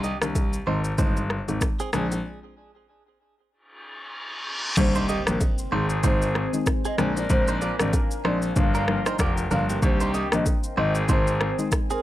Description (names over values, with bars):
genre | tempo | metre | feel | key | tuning
afrobeats | 95 BPM | 4/4 | swing 58% on 16ths | C minor | A4 = 440 Hz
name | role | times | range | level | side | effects
soft round pluck | accompaniment | 0.0-11.8 s | Eb3 to Eb4 | -30 LUFS | left 2 dB | chorus
direct-recorded clean electric guitar | riff | 0.0-12.0 s | Bb3 to Eb5 | -32 LUFS | right 5 dB | wide subtle chorus, tape echo
clear concert grand piano | bass | 0.0-11.5 s | F1 to C2 | -26 LUFS | left 1 dB | none
afro-pop drum kit | drums | 0.0-12.0 s | crash cymbal, kick drum, rim click, shaker | -24 LUFS | equal | none
bongos and congas | percussion | 0.0-11.9 s | none | -34 LUFS | right 2 dB | none
reverse cymbal and impact | sound effects | 3.8-7.3 s | none | -32 LUFS | equal | none
hollow clarinet-like synth lead | melody | 4.8-12.0 s | Ab4 to F5 | -31 LUFS | equal | chorus, tape echo
clear horn section | second line | 4.8-11.7 s | Eb3 to Bb4 | -34 LUFS | left 2 dB | none
deep dark ambient pad | sustained chords | 5.3-12.0 s | C4 to Ab5 | -35 LUFS | left 3 dB | chorus, built-in reverb, sidechain pumping
room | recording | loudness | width
light reverb | dry, gritty hardware recording | -21 LUFS | side -14 dB against mid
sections
0.0-4.8 A section; 4.8-12.0 B section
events
break 2.2-4.8; reverse cymbal 3.8-4.8; impact 4.8-7.3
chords
0.0 Cm7; 0.7 Ab; 1.9 Bb7; 3.5 N.C.; 4.8 Cm7; 5.7 Ab; 7.0 Bb7; 8.6 Gm7; 9.8 Cm7; 10.8 Ab